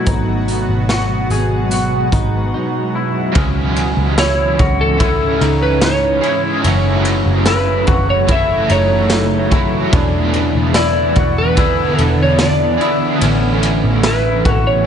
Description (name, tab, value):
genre	dream pop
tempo	73 BPM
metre	4/4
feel	straight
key	unclear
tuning	A4 = 441 Hz
part	granular cloud pad	sustained chords	0.0-14.9 s	G#2 to F#4	-20 LUFS	equal	built-in reverb
part	clean electric guitar	arpeggios	0.0-14.9 s	C#4 to G#4	-22 LUFS	left 2 dB	lush chorus, ping-pong delay
part	vintage muted picked electric bass	bass	0.1-14.9 s	E1 to C#2	-18 LUFS	equal	none
part	raw garage drum kit	drums	0.1-14.6 s	hi-hat, kick drum, ride cymbal, snare drum, tambourine	-19 LUFS	equal	none
part	raw garage guitar	accompaniment	3.3-14.9 s	A2 to C#5	-21 LUFS	right 2 dB	overdrive, tremolo, analog chorus
part	celesta	texture	3.8-11.5 s	A4 to G#5	-30 LUFS	right 1 dB	none
part	electric slide guitar	melody	4.2-14.9 s	A4 to E5	-18 LUFS	right 1 dB	ping-pong delay
room	moderate concert hall reverb, RT60 2.4 s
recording	nothing above 10.6 kHz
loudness	-12 LUFS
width	side -8 dB against mid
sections	0.0-3.4 A section; 3.4-14.9 B section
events	break 2.5-3.4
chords	0.1 G#m7; 3.4 C#m; 6.6 F#m7; 9.9 E7; 13.2 A